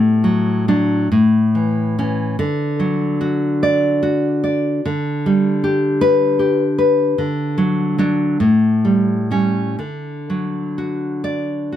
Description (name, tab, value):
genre	romantic piece for solo classical guitar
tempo	40-53 BPM (dotted quarters)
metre	6/8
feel	rubato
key	D major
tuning	A4 = 439 Hz
part	nylon-string guitar	solo	0.0-11.8 s	A2 to D5	-15 LUFS	equal	none
room	light reverb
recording	none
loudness	-15 LUFS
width	side -11 dB against mid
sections	0.0-11.8 A section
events	none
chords	0.0 D/A; 1.1 A; 2.4 D; 4.8 G/D; 7.2 D; 8.4 A7; 9.8 D